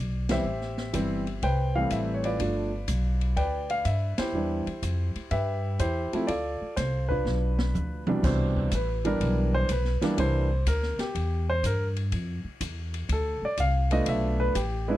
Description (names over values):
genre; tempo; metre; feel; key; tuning
jazz piano trio; 123 BPM; 4/4; swing 68% on 8ths; C major; A4 = 441 Hz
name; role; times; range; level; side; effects
warm concert grand piano; melody; 0.0-15.0 s; C2 to G5; -28 LUFS; equal; none
upright bass; bass; 0.0-15.0 s; G1 to G2; -28 LUFS; equal; none
open jazz drum kit; drums; 0.3-14.7 s; crash cymbal, hi-hat, kick drum, ride cymbal, snare drum, toms; -35 LUFS; left 1 dB; none
room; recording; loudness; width
light reverb; dry, close 1970s-style studio recording; -25 LUFS; side -14 dB against mid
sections
0.0-8.2 A section; 8.2-15.0 B section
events
band accent 0.2, 4.1; drum fill 7.3-8.2; grand piano solo 8.2-15.0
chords
0.4 Am9; 2.4 G7; 4.3 Cmaj7; 6.3 Dm7; 7.3 G7 (rootless); 8.2 Cmaj7; 10.2 C7; 12.1 Fmaj7; 14.1 Bm7b5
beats
| 0.45 0.94 1.42 1.91 | 2.39 2.88 3.37 3.85 | 4.34 4.83 5.31 5.80 | 6.29 6.77 7.26 7.75 | 8.23 8.72 9.20 9.69 | 10.18 10.66 11.15 11.63 | 12.12 12.61 13.09 13.58 | 14.06 14.55